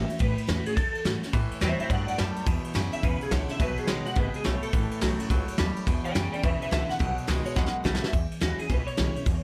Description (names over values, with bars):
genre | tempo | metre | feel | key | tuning
rockabilly | 212 BPM | 4/4 | swing 63% on 8ths | E major | A4 = 441 Hz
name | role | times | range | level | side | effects
electric guitar through a small old amp | melody | 0.0-9.4 s | F#4 to A5 | -35 LUFS | equal | analog chorus, tape echo
picked steel-string acoustic guitar | accompaniment | 0.0-9.4 s | E2 to F#4 | -36 LUFS | equal | none
upright bass | bass | 0.0-9.4 s | G#1 to A2 | -33 LUFS | equal | none
soft brush drum kit | drums | 0.1-9.3 s | kick drum, ride cymbal, snare drum | -31 LUFS | equal | none
clean electric guitar | riff | 1.3-8.1 s | E2 to A3 | -37 LUFS | equal | none
room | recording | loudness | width
light reverb | none | -27 LUFS | mono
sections
0.0-8.1 A section; 8.1-9.4 B section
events
clean electric guitar solo 0.0-8.1; drum fill 7.6-8.1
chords
0.0 A6; 1.3 Am7; 2.5 E6; 3.6 B6; 4.7 A6; 5.9 E6; 7.0 B6; 8.1 E6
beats
| 0.20 0.49 0.77 1.05 | 1.34 1.62 1.91 2.19 | 2.47 2.76 3.04 3.32 | 3.61 3.89 4.17 4.46 | 4.74 5.02 5.30 5.59 | 5.87 6.15 6.44 6.72 | 7.00 7.29 7.57 7.85 | 8.13 8.42 8.70 8.98 | 9.27